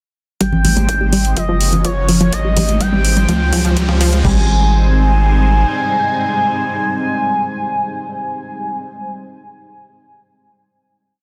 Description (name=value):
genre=progressive house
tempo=125 BPM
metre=4/4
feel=straight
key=Ab major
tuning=A4 = 440 Hz
part: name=expressive portamento lead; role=melody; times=0.4-8.8 s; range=Db5 to Ab5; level=-22 LUFS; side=equal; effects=analog chorus, tape echo
part: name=lush unison pad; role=sustained chords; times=0.4-8.8 s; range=G3 to Db5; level=-26 LUFS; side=equal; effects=chorus, phaser, sidechain pumping
part: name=unison pluck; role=arpeggios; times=0.4-4.5 s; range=F3 to G3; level=-21 LUFS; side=equal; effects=sidechain pumping, tape echo
part: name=saturated sub bass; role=bass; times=0.4-5.6 s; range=Gb1 to Db2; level=-17 LUFS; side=equal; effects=sidechain pumping
part: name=deep house drum kit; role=drums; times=0.4-4.4 s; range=crash cymbal, kick drum, toms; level=-23 LUFS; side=equal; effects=high-pass filter on kick, high-pass filter on toms, high-pass filter on cymbals
part: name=electronic hi-hat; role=drums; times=0.4-4.2 s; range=none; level=-23 LUFS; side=equal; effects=sidechain pumping on hats, high-pass filter on hats
part: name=riser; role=sound effects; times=1.9-4.2 s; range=none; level=-28 LUFS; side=equal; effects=none
part: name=congas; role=percussion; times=0.5-3.4 s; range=none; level=-22 LUFS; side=equal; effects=sidechain pumping on perc
room=light reverb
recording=dense, heavily limited modern master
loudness=-15 LUFS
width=mono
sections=0.4-4.2 build; 4.2-8.1 final chord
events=build-up 0.4-4.2; filter sweep on synth pluck 0.4-4.2; riser 1.9-4.2; drum fill 2.3-4.2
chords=0.4 Abmaj7; 1.4 Gbmaj7; 2.3 Abmaj7; 3.3 Dbmaj7; 4.2 Abmaj7